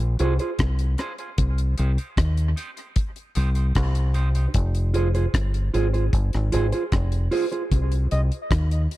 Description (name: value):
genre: dub reggae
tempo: 76 BPM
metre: 4/4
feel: straight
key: C minor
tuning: A4 = 439 Hz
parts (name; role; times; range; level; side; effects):
- deep dub fingered electric bass; bass; 0.0-8.9 s; F1 to Eb2; -21 LUFS; equal; none
- deep reggae drum kit; drums; 0.0-9.0 s; hi-hat, kick drum, rim click; -25 LUFS; equal; none
- mellow electric guitar; accompaniment; 0.2-7.6 s; Eb4 to C5; -28 LUFS; right 4 dB; high-pass filter, dub echo
- warm flugelhorn; melody; 8.1-8.2 s; Eb5; -33 LUFS; left 1 dB; dub echo
room: small room ambience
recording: dry, close 1970s-style studio recording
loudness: -20 LUFS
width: side -16 dB against mid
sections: 0.0-9.0 A section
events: break 0.0-4.5; filter sweep on clean electric guitar 0.0-4.5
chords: 0.0 Fm; 1.4 Cm; 4.5 Fm; 7.7 Cm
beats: 0.59 | 1.38 2.17 2.96 3.76 | 4.55 5.34 6.13 6.92 | 7.71 8.50